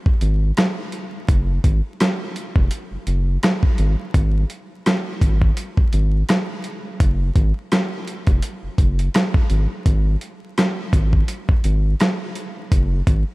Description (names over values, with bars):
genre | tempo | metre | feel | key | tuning
hip hop, boom-bap hip-hop | 84 BPM | 4/4 | swing 55% on 16ths | unclear | A4 = 439 Hz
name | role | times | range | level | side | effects
dusty soul sampler-style drum kit | drums | 0.1-13.3 s | hi-hat, kick drum, rim click, snare drum | -18 LUFS | equal | none
round analog bass | bass | 0.2-13.2 s | F1 to G#1 | -19 LUFS | equal | none
room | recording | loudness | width
light reverb | vinyl crackle | -17 LUFS | side -22 dB against mid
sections
0.0-13.3 A section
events
none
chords
none